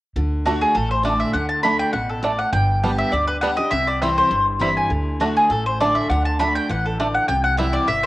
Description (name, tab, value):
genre	bluegrass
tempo	202 BPM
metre	4/4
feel	straight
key	D mixolydian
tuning	A4 = 441 Hz
part	picked steel-string acoustic guitar	accompaniment	0.2-8.1 s	G2 to G4	-24 LUFS	equal	none
part	upright bass	bass	0.2-8.1 s	G1 to D2	-25 LUFS	equal	none
part	bluegrass banjo	melody	0.5-7.7 s	G3 to E4	-27 LUFS	right 3 dB	cassette tape
part	mandolin	melody	0.5-8.1 s	F#4 to B5	-20 LUFS	left 1 dB	cassette tape
room	moderate spring reverb, RT60 2.2 s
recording	home recording on cassette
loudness	-17 LUFS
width	side -17 dB against mid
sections	0.2-8.1 A section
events	none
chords	0.2 D; 2.5 G; 3.7 C; 4.9 D; 7.3 C